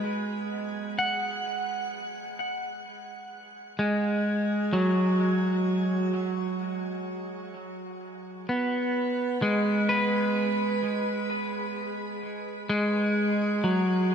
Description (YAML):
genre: ambient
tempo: 64 BPM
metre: 3/4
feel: straight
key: unclear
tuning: A4 = 440 Hz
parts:
  - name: electric guitar at the edge of break-up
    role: solo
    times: 0.0-14.1 s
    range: F#3 to F#5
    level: -26 LUFS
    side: equal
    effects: tape echo
room: wet shimmer reverb, RT60 7.4 s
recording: none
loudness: -25 LUFS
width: side -7 dB against mid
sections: 0.0-2.9 A section; 2.9-14.1 B section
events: none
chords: 0.0 B5; 2.9 F#sus2; 8.5 G#m; 11.3 F#sus24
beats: | 0.05 0.98 1.92 | 2.86 3.80 4.73 | 5.67 6.61 7.55 | 8.48 9.42 10.36 | 11.30 12.23 13.17 | 14.11